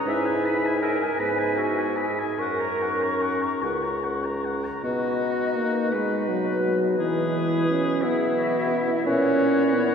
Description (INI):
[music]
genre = classical, slow romantic movement for wind quintet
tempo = 48-59 BPM (dotted quarters)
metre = 6/8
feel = rubato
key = B major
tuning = A4 = 440 Hz
[part]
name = hollow concert flute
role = melody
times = 0.0-9.9 s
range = B4 to C#6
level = -30 LUFS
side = left 4 dB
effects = none
[part]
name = warm oboe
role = second line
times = 0.0-9.9 s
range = E4 to B5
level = -31 LUFS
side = left 3 dB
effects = none
[part]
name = bright clarinet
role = accompaniment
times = 0.0-9.9 s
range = D#4 to B4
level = -30 LUFS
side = right 2 dB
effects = none
[part]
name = warm French horn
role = accompaniment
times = 0.0-9.9 s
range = E3 to E4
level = -26 LUFS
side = equal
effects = none
[part]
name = mellow bassoon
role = bass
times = 0.1-9.9 s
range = C#2 to B2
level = -27 LUFS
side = right 1 dB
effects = none
[sound]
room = wet cathedral reverb, RT60 6.1 s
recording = recorded in a church or concert hall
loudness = -22 LUFS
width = side -7 dB against mid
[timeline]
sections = 0.0-4.8 A section; 4.8-9.9 B section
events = none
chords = 0.1 E/G#; 2.4 F#; 4.8 B; 7.0 E69/B; 9.1 F#7/A#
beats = | 0.07 1.19 | 2.38 3.62 | 4.84 5.93 | 6.99 8.03 | 9.06